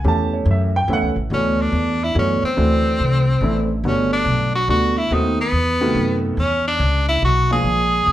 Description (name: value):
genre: jazz, small-group swing and bop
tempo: 142 BPM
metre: 3/4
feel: swing 65% on 8ths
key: D major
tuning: A4 = 441 Hz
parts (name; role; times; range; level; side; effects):
- warm baby grand piano; accompaniment; 0.0-8.1 s; C3 to A5; -21 LUFS; right 1 dB; none
- upright bass; bass; 0.0-8.1 s; G1 to F#2; -20 LUFS; equal; none
- edgy tenor saxophone; melody; 1.3-8.1 s; B3 to G#4; -20 LUFS; equal; none
room: wet club reverb, RT60 0.8 s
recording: heard from further back in the room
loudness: -16 LUFS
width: side -13 dB against mid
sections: 0.0-1.3 A section; 1.3-8.1 B section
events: none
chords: 0.0 A7; 1.3 D69; 2.6 D9; 3.8 Gmaj9; 5.1 B7b9; 6.4 E5